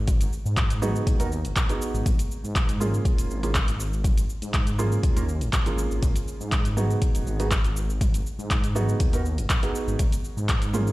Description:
afro house; 121 BPM; 4/4; straight; G# dorian; A4 = 441 Hz
dark detuned saw bass; bass; 0.0-10.9 s; D#1 to G#2; -27 LUFS; equal; sidechain pumping
deep house drum kit; drums; 0.1-10.9 s; handclaps, hi-hat, shaker, toms; -30 LUFS; equal; overdrive
electronic kick drum; drums; 0.1-10.6 s; -24 LUFS; equal
felt-muted upright piano; stabs; 0.8-10.9 s; A#3 to A#4; -31 LUFS; right 3 dB; vintage 12-bit sampler grit, sidechain pumping, dub echo
digital ambience; played on a big sound system in a bare room, stone room reverb; -22 LUFS; side -18 dB against mid
0.0-10.9 A section
0.0 G#m7; 2.1 A#m7; 6.0 G#m7; 10.0 A#m7

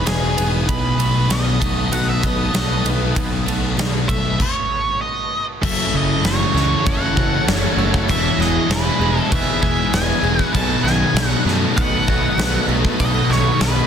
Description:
rock, shoegaze and dream pop; 98 BPM; 4/4; straight; A4 = 440 Hz
octave-fuzz lead guitar; melody; 0.0-13.9 s; G#4 to A5; -23 LUFS; right 1 dB; distortion, analog delay
shimmering ambient pad; sustained chords; 0.0-13.9 s; G#4 to D#6; -30 LUFS; equal; chorus, built-in reverb
picked twelve-string acoustic guitar; arpeggios; 0.0-13.9 s; E3 to A4; -33 LUFS; right 8 dB
clean electric guitar; riff; 0.0-13.9 s; E2 to G#4; -27 LUFS; right 9 dB; reverse reverb
thick fuzz guitar; riff; 0.0-13.9 s; F#2 to A4; -24 LUFS; left 9 dB; distortion, analog chorus
fuzz picked electric bass; bass; 0.0-13.8 s; E1 to F#2; -21 LUFS; equal; overdrive
huge arena drum kit; drums; 0.1-13.8 s; crash cymbal, kick drum, ride cymbal, snare drum; -21 LUFS; equal; soft clipping on kick
overdriven electric guitar; riff; 5.6-13.9 s; F#2 to A4; -25 LUFS; right 1 dB
little or no reverb; dense, heavily limited modern master; -16 LUFS; side -8 dB against mid
0.0-5.6 A section; 5.6-13.9 B section
0.0 Emaj7; 0.7 B7; 5.6 F#m7; 8.1 Emaj7; 10.5 B7

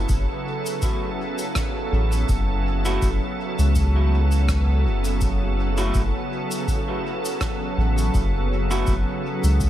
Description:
ambient dub; 82 BPM; 4/4; swing 55% on 16ths; F# minor; A4 = 442 Hz
soft additive organ-like pad; sustained chords; 0.0-9.7 s; C#3 to A4; -26 LUFS; right 1 dB; ensemble chorus, built-in reverb
soft dub sub bass; bass; 0.0-9.7 s; F#1 to C#2; -20 LUFS; equal
cabasa and rim click; drums; 0.1-9.7 s; -34 LUFS; equal; dub echo
electronic kick drum; drums; 0.1-9.7 s; -26 LUFS; equal
electric guitar through a small old amp; stabs; 2.9-8.9 s; A3 to F#4; -32 LUFS; equal; dub echo
light reverb; -20 LUFS; side -12 dB against mid
0.0-9.7 A section
0.0 F#m7

